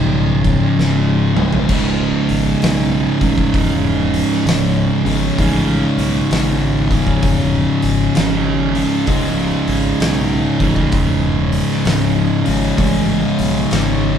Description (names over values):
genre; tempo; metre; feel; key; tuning
stoner and doom metal; 65 BPM; 4/4; swing 65% on 8ths; unclear; A4 = 441 Hz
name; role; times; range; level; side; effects
analog drone; sustained chords; 0.1-14.2 s; C#3 to C#4; -27 LUFS; equal; chorus
thick fuzz guitar; riff; 0.0-14.2 s; C#2 to C#3; -19 LUFS; left 5 dB; distortion
thick fuzz guitar; riff; 0.0-14.2 s; C#2 to C#3; -17 LUFS; right 4 dB; distortion
overdriven fingered electric bass; bass; 0.0-14.2 s; C#1 to B1; -22 LUFS; left 1 dB; none
oversized low-tuned drum kit; drums; 0.4-14.0 s; crash cymbal, hi-hat, kick drum, snare drum, toms; -21 LUFS; equal; none
room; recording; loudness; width
moderate studio reverb, RT60 0.6 s; band playing live in one room; -13 LUFS; side -8 dB against mid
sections
0.0-1.7 A section; 1.7-14.2 B section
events
drum fill 0.8-1.7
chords
0.0 C#5; 1.7 C#m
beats
0.78 | 1.70 2.62 3.54 4.46 | 5.38 6.31 7.23 8.15 | 9.08 10.01 10.93 11.86 | 12.79 13.71